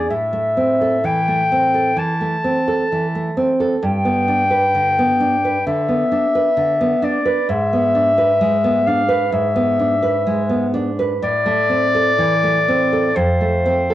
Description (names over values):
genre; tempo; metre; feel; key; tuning
romantic duo for clarinet and classical guitar; 64 BPM; 4/4; rubato; A minor; A4 = 441 Hz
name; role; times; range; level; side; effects
warm clarinet; melody; 0.0-13.9 s; C5 to A5; -17 LUFS; left 2 dB; cassette tape
nylon-string guitar; accompaniment; 0.0-13.9 s; F2 to B4; -18 LUFS; right 2 dB; cassette tape
room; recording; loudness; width
light reverb, studio reverb; home recording on cassette; -15 LUFS; side -13 dB against mid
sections
0.0-13.9 A section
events
none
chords
0.1 Am; 3.8 G; 7.5 E7/G#; 11.2 Am; 13.2 F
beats
| 0.11 1.06 2.00 2.93 | 3.84 4.74 5.66 6.58 | 7.49 8.41 9.34 10.28 | 11.23 12.20 13.16